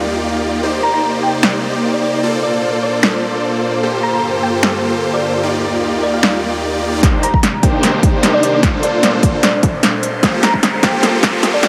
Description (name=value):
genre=future bass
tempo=150 BPM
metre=4/4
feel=swing 54% on 16ths, half-time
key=unclear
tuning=A4 = 442 Hz
part: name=airy breathy pad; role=sustained chords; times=0.0-11.7 s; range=Eb2 to F5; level=-28 LUFS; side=equal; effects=chorus, sidechain pumping
part: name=supersaw chords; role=riff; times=0.0-11.7 s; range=Bb3 to D5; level=-19 LUFS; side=equal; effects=sidechain pumping, low-pass filter
part: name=thumb-piano-like synth pluck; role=melody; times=0.8-11.6 s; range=D5 to Bb5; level=-23 LUFS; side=equal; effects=ensemble chorus, sidechain pumping, tape echo
part: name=big-room dance drum kit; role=drums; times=1.4-11.7 s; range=finger snaps, hi-hat, snare drum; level=-18 LUFS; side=equal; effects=overdrive
part: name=electronic kick drum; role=drums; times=7.0-11.3 s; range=none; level=-17 LUFS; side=equal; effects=overdrive
part: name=riser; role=sound effects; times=8.8-11.7 s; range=none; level=-27 LUFS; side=equal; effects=none
room=moderate huge ambient reverb, RT60 4.9 s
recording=high-pass filter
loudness=-15 LUFS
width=mono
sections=0.0-7.0 A section; 7.0-11.7 B section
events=build-up 7.0-11.7; drum fill 7.0-11.7; filter sweep 7.0-11.7; riser 8.8-11.7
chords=0.0 Ebmaj9; 0.6 Cm9; 2.2 Bbmaj9; 3.8 Gm11; 5.4 Ebmaj9; 7.0 Cm9; 8.6 Bbmaj9; 10.2 Gm11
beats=0.23 | 0.63 1.03 1.43 1.83 | 2.23 2.63 3.03 3.43 | 3.83 4.23 4.63 5.03 | 5.43 5.83 6.23 6.63 | 7.03 7.43 7.83 8.23 | 8.63 9.03 9.43 9.83 | 10.23 10.63 11.03 11.43